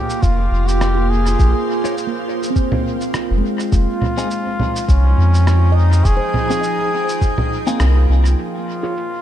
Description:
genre	ambient dub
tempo	103 BPM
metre	4/4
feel	swing 56% on 16ths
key	Bb dorian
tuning	A4 = 439 Hz
part	trombone with straight mute	melody	0.0-9.2 s	Db4 to Ab4	-23 LUFS	left 1 dB	dub echo
part	soft additive organ-like pad	sustained chords	0.0-9.2 s	F3 to G5	-24 LUFS	right 1 dB	ensemble chorus, built-in reverb
part	electronic shaker, rim click and congas	drums	0.1-9.1 s	none	-25 LUFS	right 1 dB	low-pass filter on perc, studio reverb, low-pass filter on snare, dub echo
part	soft dub sub bass	bass	0.2-8.4 s	F1 to F2	-13 LUFS	equal	none
part	electronic kick drum	drums	0.2-7.3 s	none	-16 LUFS	equal	studio reverb
part	handpan	arpeggios	0.9-8.6 s	Ab3 to Eb5	-25 LUFS	right 3 dB	analog delay
part	clean electric guitar	stabs	1.8-8.9 s	C4 to Db5	-27 LUFS	left 3 dB	phaser, low-pass filter, dub echo
room	light reverb, digital ambience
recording	echo-heavy mix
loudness	-14 LUFS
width	side -11 dB against mid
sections	0.0-8.4 A section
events	band accent 7.8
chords	0.0 Bb7(no3); 3.7 Fm7; 8.4 Bbm7

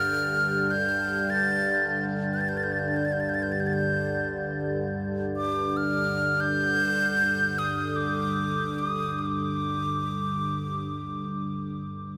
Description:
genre	world meditative, free-time meditation music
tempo	free time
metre	none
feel	none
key	unclear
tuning	A4 = 441 Hz
part	breathy concert flute	melody	0.0-11.3 s	D6 to A6	-29 LUFS	equal	none
part	deep dark ambient pad	drone	0.0-12.2 s	G2 to D3	-31 LUFS	equal	chorus, built-in reverb
part	crotales	texture	0.0-4.3 s	none	barely audible	none	none
room	wet huge ambient reverb, RT60 7.8 s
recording	in a vast, echoing space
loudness	-27 LUFS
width	mono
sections	0.0-12.2 A section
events	none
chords	none

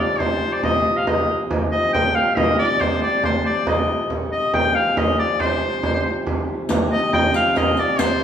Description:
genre	medieval dance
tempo	139 BPM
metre	3/4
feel	straight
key	C minor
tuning	A4 = 440 Hz
part	bright shawm	melody	0.0-8.2 s	C5 to G5	-20 LUFS	left 1 dB	none
part	hand-pumped harmonium	drone	0.0-8.2 s	C3	-28 LUFS	equal	none
part	frame drum	percussion	0.2-8.2 s	none	-21 LUFS	right 1 dB	none
part	riq	percussion	6.7-8.2 s	none	-26 LUFS	left 1 dB	none
room	wet recital hall reverb, RT60 1.6 s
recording	recorded in a church or concert hall, small room ambience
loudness	-17 LUFS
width	side -8 dB against mid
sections	0.0-6.7 A section; 6.7-8.2 A section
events	none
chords	none

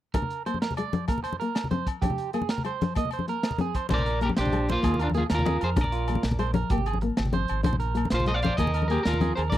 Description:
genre	highlife guitar band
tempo	128 BPM (dotted quarters)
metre	12/8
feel	straight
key	Bb mixolydian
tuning	A4 = 440 Hz
part	nylon-string guitar	accompaniment	0.1-9.6 s	Ab3 to D4	-32 LUFS	left 4 dB	none
part	electric guitar at the edge of break-up	arpeggios	0.1-9.6 s	F4 to Eb5	-32 LUFS	right 9 dB	warbly pitch drift, tape echo
part	crunchy breakbeat drum kit	drums	0.1-9.6 s	crash cymbal, hi-hat, kick drum, snare drum	-29 LUFS	right 1 dB	none
part	agogo bells	percussion	0.1-9.6 s	none	-39 LUFS	left 15 dB	none
part	congas	percussion	0.1-9.6 s	none	-30 LUFS	left 3 dB	none
part	electric guitar at the edge of break-up	melody	3.9-9.6 s	Bb3 to F5	-28 LUFS	equal	none
part	deep dub fingered electric bass	bass	3.9-9.6 s	Ab1 to F2	-28 LUFS	equal	none
room	little or no reverb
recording	dry, close 1970s-style studio recording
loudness	-24 LUFS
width	side -13 dB against mid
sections	0.1-3.9 A section; 3.9-9.6 B section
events	none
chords	0.1 Bbadd9; 1.1 Bbsus2; 2.0 Bbadd9; 3.0 Ab; 3.9 Bbadd9; 4.8 Ebsus2; 5.8 Bbadd9; 6.7 Ab; 7.7 Bbadd9; 8.6 Ebsus2

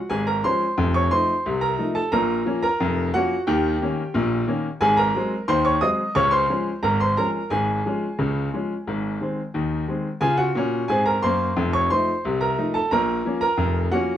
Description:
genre	ragtime piano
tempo	89 BPM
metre	2/4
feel	straight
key	Db major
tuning	A4 = 438 Hz
part	clear grand piano	solo	0.0-14.2 s	F1 to Eb6	-20 LUFS	equal	none
room	moderate studio reverb, RT60 0.6 s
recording	worn, warbling old tape, cassette tape, warbly pitch drift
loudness	-20 LUFS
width	side -10 dB against mid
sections	0.0-14.2 A section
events	none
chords	0.0 Db; 0.8 F7; 2.1 Bbm; 3.5 Eb7; 4.8 Ab7; 6.2 Db; 7.5 Db/Ab; 8.9 Ab; 10.2 Db; 11.6 F7; 12.9 Bbm

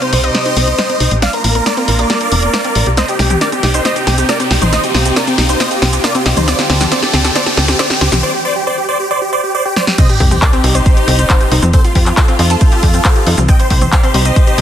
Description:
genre	uplifting trance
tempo	137 BPM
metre	4/4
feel	straight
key	C dorian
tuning	A4 = 436 Hz
part	big supersaw lead	melody	0.0-14.6 s	Eb4 to G5	-16 LUFS	right 1 dB	phaser, sidechain pumping, tape echo
part	analog pluck	second line	0.0-14.6 s	F4 to G5	-24 LUFS	equal	chorus, sidechain pumping, tape echo
part	dark studio string section	sustained chords	0.0-14.6 s	C3 to A4	-22 LUFS	equal	vintage 12-bit sampler grit, sidechain pumping
part	wide unison pluck	arpeggios	0.0-14.6 s	G3 to C5	-22 LUFS	left 2 dB	sidechain pumping, tape echo
part	house drum kit	drums	0.0-14.6 s	crash cymbal, handclaps, hi-hat, shaker, snare drum, toms	-17 LUFS	equal	soft clipping on snare
part	riser and sub drop	sound effects	0.6-11.7 s	none	-22 LUFS	equal	none
part	tight sequencer bass	bass	0.1-14.6 s	F1 to F2	-14 LUFS	equal	sidechain pumping
part	electronic kick drum	drums	10.0-14.5 s	none	-10 LUFS	equal	none
room	light reverb, digital ambience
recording	dense, heavily limited modern master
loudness	-10 LUFS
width	side -10 dB against mid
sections	0.0-10.0 A section; 10.0-14.6 B section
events	build-up 0.0-10.0; drum fill 0.0-8.2, 9.8; filter sweep on synth arpeggio sound 0.0-10.0; riser 0.6-8.2; break 8.2-10.0; drop 10.0-14.6; impact 10.0-11.7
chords	0.0 Cm; 1.2 Bb; 3.0 Cm; 6.5 Dm; 10.0 Cm; 11.7 F; 13.5 Cm

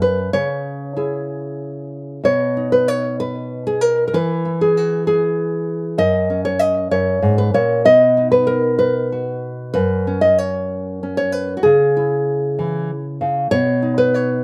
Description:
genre	folk, solo fingerstyle acoustic guitar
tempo	64 BPM (dotted quarters)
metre	6/8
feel	rubato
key	unclear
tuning	A4 = 445 Hz
part	nylon-string guitar	solo	0.0-14.4 s	F#2 to D#5	-18 LUFS	equal	none
room	little or no reverb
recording	recorded outdoors, with no room sound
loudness	-18 LUFS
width	mono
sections	0.0-2.2 A section; 2.2-14.4 B section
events	none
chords	0.3 C#m; 2.2 B; 4.1 N.C.; 6.0 F#; 7.8 B; 9.7 F#5; 11.6 C#m; 13.5 Badd9

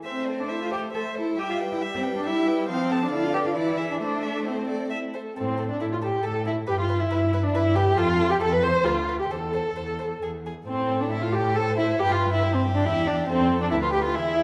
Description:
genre	quick classical-period movement for string quartet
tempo	137 BPM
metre	3/4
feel	rubato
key	A minor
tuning	A4 = 440 Hz
part	warm violin	melody	0.0-14.4 s	G4 to A5	-36 LUFS	equal	none
part	dark violin	second line	0.0-14.4 s	C4 to D5	-29 LUFS	equal	none
part	warm viola	accompaniment	0.0-14.4 s	D3 to C5	-31 LUFS	equal	none
part	warm cello	bass	0.1-14.4 s	D2 to A4	-30 LUFS	equal	none
room	wet recital hall reverb, RT60 1.4 s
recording	lossy compression artefacts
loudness	-25 LUFS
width	mono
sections	0.0-5.4 A section; 5.4-14.4 A section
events	none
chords	0.0 Am; 1.4 Em/G; 2.7 F; 3.1 Bdim/D; 3.6 E7; 4.0 Am; 5.4 Am7; 6.7 Em/G; 8.0 F; 8.8 Bdim/D; 9.3 Am/E; 10.2 E; 10.7 Am; 12.0 Em/G; 13.3 F; 13.7 Dm6

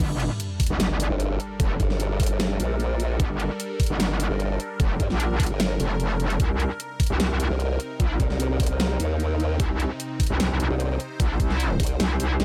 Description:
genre	heavy wobble dubstep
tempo	150 BPM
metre	4/4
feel	half-time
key	G minor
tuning	A4 = 442 Hz
part	evolving wavetable pad	sustained chords	0.0-12.4 s	C3 to C5	-36 LUFS	equal	phaser, built-in reverb, sidechain pumping
part	metallic wobble bass	bass	0.0-12.4 s	F1 to C2	-27 LUFS	equal	distortion, chorus, overdrive
part	dubstep drum kit	drums	0.0-12.4 s	crash cymbal, hi-hat, snare drum	-31 LUFS	equal	none
part	electronic kick drum	drums	0.0-11.9 s	none	-26 LUFS	equal	none
part	sub drop	sound effects	0.0-1.6 s	none	-34 LUFS	equal	none
part	formant-sweep wobble bass	bass	1.1-12.4 s	G1 to G2	-27 LUFS	equal	chorus, overdrive
room	digital ambience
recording	none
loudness	-25 LUFS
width	mono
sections	0.0-12.4 A section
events	drop 0.0-12.4; impact 0.0-1.6; kick drops out 12.0-12.4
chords	0.0 Gmadd9; 6.4 Cm7

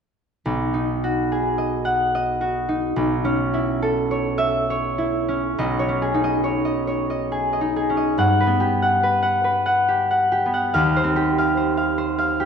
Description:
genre	classical, solo harp piece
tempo	71 BPM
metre	3/4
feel	rubato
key	B mixolydian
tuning	A4 = 440 Hz
part	concert harp	solo	0.5-12.5 s	B1 to F#5	-18 LUFS	equal	none
room	wet recital hall reverb, RT60 1.7 s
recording	recorded in a church or concert hall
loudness	-19 LUFS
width	side -6 dB against mid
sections	0.5-5.6 A section; 5.6-12.5 B section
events	none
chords	0.5 B6; 3.0 Aadd9/B; 5.6 B69; 8.2 Gmaj7; 10.7 D#69

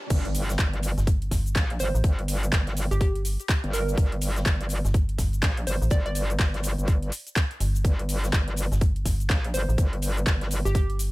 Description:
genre	bass house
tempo	124 BPM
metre	4/4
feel	swing 61% on 16ths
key	G minor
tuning	A4 = 440 Hz
part	riser, swell and impact	sound effects	0.0-2.0 s	none	-38 LUFS	equal	none
part	metallic wobble bass	bass	0.1-10.6 s	G1 to Bb1	-27 LUFS	equal	chorus, overdrive, sidechain pumping, high-pass filter
part	big rock drum kit	drums	0.1-11.1 s	hi-hat, snare drum	-43 LUFS	left 3 dB	none
part	big-room dance drum kit	drums	0.1-11.1 s	crash cymbal, handclaps, hi-hat, shaker	-31 LUFS	equal	overdrive, small room ambience
part	electronic kick drum	drums	0.1-10.9 s	none	-23 LUFS	equal	small room ambience
part	metallic FM bass	bass	1.0-11.1 s	G1 to A1	-25 LUFS	equal	overdrive, sidechain pumping
part	hollow square pluck	melody	1.8-6.1, 9.5-10.8 s	G4 to D5	-33 LUFS	right 2 dB	chorus, cassette tape, ping-pong delay
room	digital ambience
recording	high-pass filter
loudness	-22 LUFS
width	side -20 dB against mid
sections	0.1-11.1 A section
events	drop 0.1-11.1; impact 0.1-2.0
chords	none

